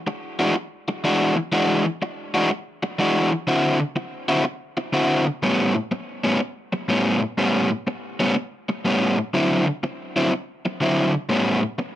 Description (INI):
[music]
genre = blues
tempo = 123 BPM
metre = 4/4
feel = swing 67% on 8ths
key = A mixolydian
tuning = A4 = 440 Hz
[part]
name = overdriven semi-hollow guitar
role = solo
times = 0.1-11.8 s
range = A2 to F#4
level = -20 LUFS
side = equal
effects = none
[sound]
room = light reverb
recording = none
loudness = -20 LUFS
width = side -13 dB against mid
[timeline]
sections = 0.0-7.4 A section; 7.4-12.0 A section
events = none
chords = 0.0 E9; 3.5 D9; 5.4 A9; 9.3 D9; 11.3 A9